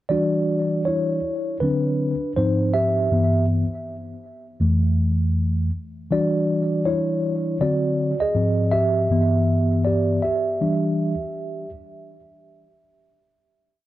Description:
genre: hip hop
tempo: 80 BPM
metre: 4/4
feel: swing 59% on 16ths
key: unclear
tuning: A4 = 438 Hz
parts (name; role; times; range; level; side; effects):
- mellow tine electric piano; solo; 0.1-11.7 s; F2 to E5; -19 LUFS; equal; medium stereo tremolo, tape echo
room: moderate studio reverb, RT60 0.5 s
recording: dark, warm production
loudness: -19 LUFS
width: side -14 dB against mid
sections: 0.1-12.1 A section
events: tine electric piano solo 0.1-12.1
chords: 0.1 Em9; 1.6 D6; 2.4 G#6; 3.1 G6; 4.6 Fmaj7; 6.1 Em9; 7.6 D7; 8.4 G#6; 9.1 G6; 10.6 Em7

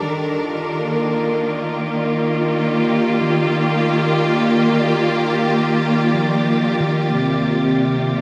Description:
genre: ambient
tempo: 68 BPM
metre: 4/4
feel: straight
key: Eb lydian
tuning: A4 = 439 Hz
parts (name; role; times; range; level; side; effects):
- rich symphonic string section; sustained chords; 0.0-8.2 s; C3 to Bb4; -19 LUFS; equal; none
- tine electric piano; arpeggios; 0.0-8.2 s; Eb3 to G4; -30 LUFS; equal; overdrive, analog delay
- wind-like tuned noise texture; texture; 0.0-8.2 s; D5 to D6; -31 LUFS; equal; built-in reverb
room: wet plate reverb, RT60 3.7 s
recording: echo-heavy mix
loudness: -18 LUFS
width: mono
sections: 0.1-8.2 A section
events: fade-in on tine electric piano 0.1-8.2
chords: 0.1 Ebmaj7; 7.1 Cm7

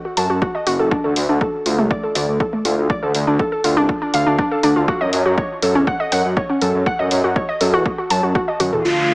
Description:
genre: melodic techno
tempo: 121 BPM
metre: 4/4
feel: straight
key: unclear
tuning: A4 = 439 Hz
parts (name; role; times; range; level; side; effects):
- warbly dusty pluck; arpeggios; 0.1-8.8 s; A3 to A5; -18 LUFS; equal; chorus, sidechain pumping, dub echo
- dark detuned saw bass; bass; 0.2-9.1 s; F#1 to F#2; -19 LUFS; equal; sidechain pumping
- house drum kit; drums; 0.2-9.1 s; hi-hat, shaker, toms; -25 LUFS; equal; low-pass filter on hats, low-pass filter on toms, low-pass filter on perc
- electronic kick drum; drums; 0.4-8.5 s; none; -22 LUFS; equal; none
- wide unison lead; melody; 8.8-9.1 s; F4; -17 LUFS; equal; none
- clear studio string section; sustained chords; 8.8-9.1 s; D3 to F4; -21 LUFS; left 1 dB; sidechain pumping, low-pass filter
- analog drone; drone; 9.0-9.1 s; D3 to A3; -33 LUFS; equal; none
- downlifter; sound effects; 8.8-9.1 s; none; -20 LUFS; equal; none
room: light reverb, digital ambience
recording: small speaker sound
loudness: -15 LUFS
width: side -26 dB against mid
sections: 0.0-8.8 A section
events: drum fill 8.6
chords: 0.0 F#m; 0.9 D5; 4.9 N.C.

